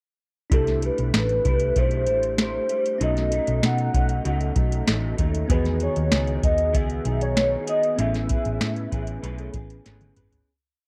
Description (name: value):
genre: indie pop, bedroom pop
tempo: 96 BPM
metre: 4/4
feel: straight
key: unclear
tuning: A4 = 440 Hz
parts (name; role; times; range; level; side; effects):
- warm velvety synth lead; melody; 0.5-9.8 s; A4 to F#5; -28 LUFS; equal; lush chorus, slapback echo
- bell-like tine electric piano; accompaniment; 0.5-10.5 s; D#3 to A4; -35 LUFS; equal; cassette tape
- electric guitar through a small old amp; accompaniment; 0.5-10.5 s; B2 to B4; -34 LUFS; equal; ensemble chorus, warbly pitch drift
- vintage muted picked electric bass; bass; 0.5-10.4 s; G#1 to B2; -28 LUFS; equal; none
- soft vintage rhythm box; drums; 0.5-10.5 s; hi-hat, kick drum, snare drum, toms; -26 LUFS; equal; overdrive
room: little or no reverb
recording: dry, close 1970s-style studio recording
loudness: -23 LUFS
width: mono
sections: 0.5-10.5 verse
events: fade-out 8.0-10.5; drum fill 9.9-10.5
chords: 0.5 C6; 3.0 B7; 5.5 Emaj7; 8.0 Amaj9